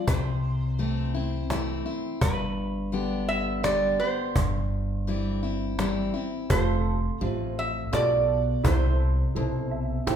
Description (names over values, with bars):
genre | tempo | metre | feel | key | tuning
honky-tonk and classic country | 84 BPM | 3/4 | straight | C major | A4 = 440 Hz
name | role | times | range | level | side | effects
lap resonator guitar | melody | 0.0-10.2 s | B4 to E5 | -29 LUFS | right 3 dB | none
picked steel-string acoustic guitar | accompaniment | 0.0-10.2 s | F2 to G4 | -29 LUFS | left 2 dB | none
upright bass | bass | 0.1-10.2 s | F1 to C2 | -29 LUFS | equal | none
cajon | drums | 0.1-10.2 s | none | -28 LUFS | equal | none
honky-tonk upright piano | accompaniment | 6.5-10.2 s | E4 to G5 | -31 LUFS | right 5 dB | none
room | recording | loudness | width
wet large studio reverb, RT60 1.2 s | band playing live in one room | -24 LUFS | side -8 dB against mid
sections
0.0-6.5 A section; 6.5-10.2 A section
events
honky-tonk piano fill 9.4-10.2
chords
0.1 C6; 2.2 G; 4.4 C/G; 6.5 Fadd9; 8.6 C6